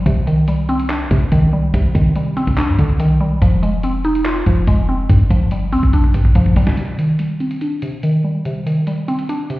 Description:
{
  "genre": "hip hop, trap",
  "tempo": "143 BPM",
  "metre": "4/4",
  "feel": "half-time",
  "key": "C harmonic minor",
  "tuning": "A4 = 439 Hz",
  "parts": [
    { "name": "mallet-like synth pluck", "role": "accompaniment", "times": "0.0-9.6 s", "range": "G2 to F4", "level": "-17 LUFS", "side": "equal", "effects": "chorus, low-pass filter" },
    { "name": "clean 808-style bass", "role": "bass", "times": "0.0-6.7 s", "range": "F1 to C3", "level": "-19 LUFS", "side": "equal", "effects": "none" },
    { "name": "dusty soul sampler-style drum kit", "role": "drums", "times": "0.1-9.6 s", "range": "handclaps, hi-hat, kick drum, snare drum", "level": "-17 LUFS", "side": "equal", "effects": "none" }
  ],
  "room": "light reverb, digital ambience",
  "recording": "heard muffled through a wall, stone room reverb, EQ",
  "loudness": "-14 LUFS",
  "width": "side -18 dB against mid",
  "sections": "0.0-6.8 A section; 6.8-9.6 B section",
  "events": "drum fill 5.9-6.8",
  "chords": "0.1 Cmadd9; 3.4 Fm7; 5.1 G7sus4; 6.8 Cmadd9"
}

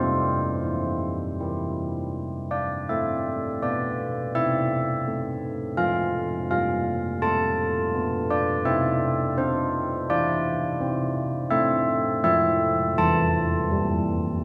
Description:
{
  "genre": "classical, tune for church bells",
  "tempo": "83 BPM",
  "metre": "4/4",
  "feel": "straight",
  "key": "unclear",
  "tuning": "A4 = 441 Hz",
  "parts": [
    { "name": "carillon bells", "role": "solo", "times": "0.0-14.4 s", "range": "E3 to A5", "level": "-25 LUFS", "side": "equal", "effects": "none" }
  ],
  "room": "wet church reverb, RT60 3.7 s",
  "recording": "none",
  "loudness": "-25 LUFS",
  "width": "mono",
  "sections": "0.0-2.9 A section; 2.9-14.4 B section",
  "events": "none",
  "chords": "0.0 C; 2.9 Am; 5.8 F; 8.7 C; 11.5 Am"
}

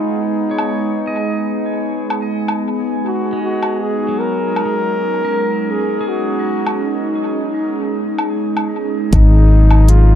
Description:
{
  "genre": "ambient dub",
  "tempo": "79 BPM",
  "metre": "4/4",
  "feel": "straight",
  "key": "G# minor",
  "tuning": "A4 = 444 Hz",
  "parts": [
    { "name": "warm trombone", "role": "melody", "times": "0.0-10.2 s", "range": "D#4 to A#4", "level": "-21 LUFS", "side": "left 1 dB", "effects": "dub echo" },
    { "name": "airy breathy pad", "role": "sustained chords", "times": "0.0-10.2 s", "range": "F#3 to G#4", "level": "-20 LUFS", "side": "right 2 dB", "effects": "chorus" },
    { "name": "drifting glass-harmonics texture", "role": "texture", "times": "0.0-9.1 s", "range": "B3 to G#4", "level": "-27 LUFS", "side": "left 4 dB", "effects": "chorus, built-in reverb" },
    { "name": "pedal steel guitar", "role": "arpeggios", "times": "0.5-9.0 s", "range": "F#3 to D#5", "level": "-28 LUFS", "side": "right 1 dB", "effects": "low-pass filter, dub echo" },
    { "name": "electronic woodblock and hi-hat", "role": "drums", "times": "0.6-10.0 s", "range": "none", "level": "-25 LUFS", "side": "left 1 dB", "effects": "low-pass filter on perc, low-pass filter on snare, low-pass filter on hats, low-pass filter on room, dub echo" },
    { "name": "fingered electric bass", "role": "bass", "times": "9.1-10.2 s", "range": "G#1", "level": "-8 LUFS", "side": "equal", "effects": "tube saturation" },
    { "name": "electronic kick drum", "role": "drums", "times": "9.1-9.3 s", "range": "none", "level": "-13 LUFS", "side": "equal", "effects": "none" }
  ],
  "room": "light reverb, digital ambience",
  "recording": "dark, warm production",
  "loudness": "-14 LUFS",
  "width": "side -10 dB against mid",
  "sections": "0.0-9.1 A section; 9.1-10.2 B section",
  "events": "filter sweep on pedal steel guitar 0.0-9.1",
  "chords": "0.0 G#m7; 9.1 G#7(no3)"
}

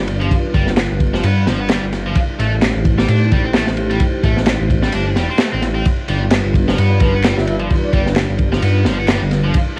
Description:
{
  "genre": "breakbeat, breaks",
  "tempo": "130 BPM",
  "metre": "4/4",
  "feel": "swing 56% on 16ths",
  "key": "unclear",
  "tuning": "A4 = 435 Hz",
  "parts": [
    { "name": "dark analog pad", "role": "sustained chords", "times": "0.0-9.8 s", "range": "G3 to C5", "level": "-26 LUFS", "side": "equal", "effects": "chorus, vintage 12-bit sampler grit, sidechain pumping, cassette tape" },
    { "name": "dark detuned saw bass", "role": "bass", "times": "0.0-9.5 s", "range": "E1 to A2", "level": "-20 LUFS", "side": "equal", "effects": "none" },
    { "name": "crunchy breakbeat drum kit", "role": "drums", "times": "0.1-9.7 s", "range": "kick drum, ride cymbal, snare drum", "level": "-20 LUFS", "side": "equal", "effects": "none" },
    { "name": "high-gain distorted guitar", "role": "riff", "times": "0.2-9.5 s", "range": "F3 to D4", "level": "-26 LUFS", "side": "equal", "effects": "distortion, tube saturation, cassette tape, analog delay" },
    { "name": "electronic handclaps", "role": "drums", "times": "0.8-9.2 s", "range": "none", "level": "-28 LUFS", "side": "equal", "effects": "overdrive" },
    { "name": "breathy flute-like synth lead", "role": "melody", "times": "7.0-8.0 s", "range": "B4 to E5", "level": "-27 LUFS", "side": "equal", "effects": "chorus, old record sound, cassette tape, analog delay" }
  ],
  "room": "light reverb, small room reverb",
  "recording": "home recording on cassette, vinyl crackle",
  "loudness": "-16 LUFS",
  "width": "mono",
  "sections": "0.0-9.8 A section",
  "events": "none",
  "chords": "0.0 G7; 2.2 Am7; 5.9 G7"
}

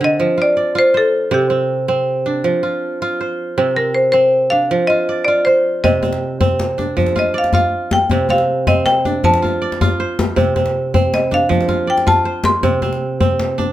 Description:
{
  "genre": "west african traditional, West African string and xylophone music",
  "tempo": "106 BPM (dotted quarters)",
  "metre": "12/8",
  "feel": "straight",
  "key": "C dorian",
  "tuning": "A4 = 441 Hz",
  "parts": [
    { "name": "marimba with hard mallets", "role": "melody", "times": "0.0-13.4 s", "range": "G4 to C6", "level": "-16 LUFS", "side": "left 1 dB", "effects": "none" },
    { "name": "kora", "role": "arpeggios", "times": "0.0-13.7 s", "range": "C3 to D5", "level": "-17 LUFS", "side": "right 2 dB", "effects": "none" },
    { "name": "djembe", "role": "percussion", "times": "5.8-13.7 s", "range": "none", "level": "-19 LUFS", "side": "left 3 dB", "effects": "none" }
  ],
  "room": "light reverb",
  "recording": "none",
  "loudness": "-13 LUFS",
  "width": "side -14 dB against mid",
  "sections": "0.0-13.7 A section",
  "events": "marimba solo 0.0-13.7",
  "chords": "0.2 F; 1.3 C5; 2.5 F5; 3.6 Csus4; 4.7 F5; 5.8 Cm; 7.0 Ebmaj7sus2/F (rootless); 8.1 C5; 9.2 F; 10.4 Csus2; 11.5 F; 12.6 Csus2"
}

